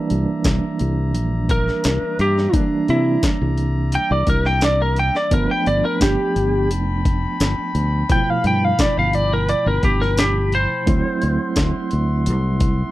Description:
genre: straight-eighth soul blues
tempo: 86 BPM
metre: 4/4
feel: straight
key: unclear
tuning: A4 = 442 Hz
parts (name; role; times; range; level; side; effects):
- overdriven tine electric piano; accompaniment; 0.0-12.9 s; B2 to E4; -25 LUFS; right 4 dB; fast tremolo
- clear horn section; sustained chords; 0.0-12.9 s; D5 to C6; -30 LUFS; left 3 dB; none
- fingered electric bass; bass; 0.1-12.8 s; F1 to C3; -20 LUFS; equal; none
- jungle sampler-style drum kit; drums; 0.1-12.8 s; hi-hat, kick drum, snare drum, tambourine; -22 LUFS; equal; overdrive
- lightly driven lead guitar; melody; 1.5-11.9 s; D4 to G5; -20 LUFS; equal; none
room: little or no reverb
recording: dry, close 1970s-style studio recording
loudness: -16 LUFS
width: side -16 dB against mid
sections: 0.0-12.9 A section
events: lead electric guitar solo 0.0-12.9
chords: 0.0 C9; 5.3 G9; 10.9 D9

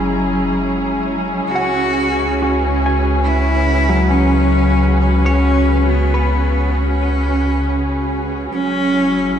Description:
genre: ambient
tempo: 68 BPM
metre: 4/4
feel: straight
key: unclear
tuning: A4 = 440 Hz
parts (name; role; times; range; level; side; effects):
- muted studio string section; sustained chords; 0.0-9.4 s; C#3 to A#5; -19 LUFS; right 1 dB; shimmer reverb
- warm sub bass; bass; 0.0-9.4 s; F#1 to C#2; -18 LUFS; equal; none
- analog drone; drone; 0.0-9.4 s; G#3; -31 LUFS; right 1 dB; chorus
- bright cello; melody; 1.5-9.4 s; B3 to F#4; -19 LUFS; equal; shimmer reverb, ping-pong delay
- semi-hollow electric guitar; arpeggios; 1.6-8.1 s; F#3 to G#5; -23 LUFS; left 1 dB; shimmer reverb, ping-pong delay
room: wet concert hall reverb, RT60 2.4 s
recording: dark, warm production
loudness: -14 LUFS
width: side -9 dB against mid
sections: 0.0-9.4 A section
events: fade-in on synth drone 0.0-9.4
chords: 0.0 F#7; 1.5 C#7sus4; 8.5 F#7(no3)

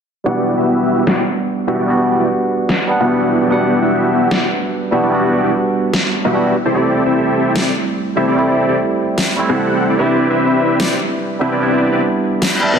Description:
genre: future bass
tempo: 148 BPM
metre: 4/4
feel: swing 55% on 16ths, half-time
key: E minor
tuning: A4 = 439 Hz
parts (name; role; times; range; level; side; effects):
- barky tine electric piano; accompaniment; 0.2-12.8 s; G3 to F#5; -17 LUFS; right 2 dB; phaser, low-pass filter, tape echo
- dense compressed supersaw; riff; 0.3-12.8 s; B3 to G5; -16 LUFS; left 1 dB; low-pass filter, tape echo
- electronic snare drum; drums; 1.1-12.5 s; none; -20 LUFS; left 1 dB; low-pass filter on snare
- reverse cymbal; sound effects; 12.5-12.8 s; none; -17 LUFS; left 3 dB; none
room: light reverb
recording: dense, heavily limited modern master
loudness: -13 LUFS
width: side -7 dB against mid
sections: 0.3-12.8 A section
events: filter sweep on drum 0.3-12.8; reverse cymbal 12.5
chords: 0.3 Em9; 6.5 D9sus4; 10.0 Cmaj9

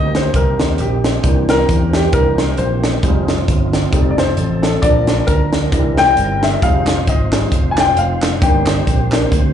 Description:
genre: uptempo gospel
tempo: 134 BPM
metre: 4/4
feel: swing 57% on 8ths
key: unclear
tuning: A4 = 443 Hz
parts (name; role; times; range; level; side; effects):
- warm upright piano; accompaniment; 0.0-9.3 s; Eb3 to Ab5; -18 LUFS; left 3 dB; slapback echo
- overdriven tonewheel organ; sustained chords; 0.0-9.5 s; E3 to C5; -24 LUFS; right 3 dB; slow rotary speaker, chorus vibrato
- fingered electric bass; bass; 0.0-9.5 s; F1 to E2; -18 LUFS; equal; none
- crisp fusion drum kit; drums; 0.1-9.4 s; hi-hat, kick drum, snare drum; -17 LUFS; equal; none
- group handclap; percussion; 6.9-9.2 s; none; -29 LUFS; right 3 dB; slapback echo
room: light reverb, studio ambience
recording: live gig heard through the venue's PA, club reverb, nothing above 10.7 kHz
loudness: -12 LUFS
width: side -9 dB against mid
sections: 0.0-9.5 A section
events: upright piano solo 0.0-9.5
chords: 0.0 Eb6; 1.2 C7; 3.0 Fm7; 3.9 F7; 4.8 Bb; 5.7 C7; 6.6 Fm7; 8.4 Cm7/G

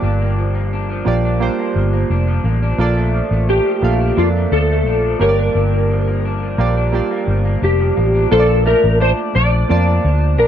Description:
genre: indie pop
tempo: 87 BPM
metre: 4/4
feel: straight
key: Bb major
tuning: A4 = 440 Hz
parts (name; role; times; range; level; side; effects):
- electric guitar through a small old amp; accompaniment; 0.0-10.5 s; G2 to D4; -24 LUFS; left 3 dB; analog chorus, vibrato effect
- warm analog keys; accompaniment; 0.0-10.5 s; Bb3 to A5; -22 LUFS; right 7 dB; chorus, cassette tape
- vintage muted fingered electric bass; bass; 0.0-10.5 s; F1 to F2; -16 LUFS; equal; none
- clean lap steel guitar; melody; 3.5-10.5 s; F4 to D5; -17 LUFS; left 1 dB; ensemble chorus, slapback echo
room: light reverb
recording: dry, close 1970s-style studio recording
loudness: -14 LUFS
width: side -9 dB against mid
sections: 0.0-8.3 A section; 8.3-10.5 B section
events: none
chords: 0.0 Gm7; 2.8 Bbmaj7; 5.2 Gm7; 8.3 Bbmaj7

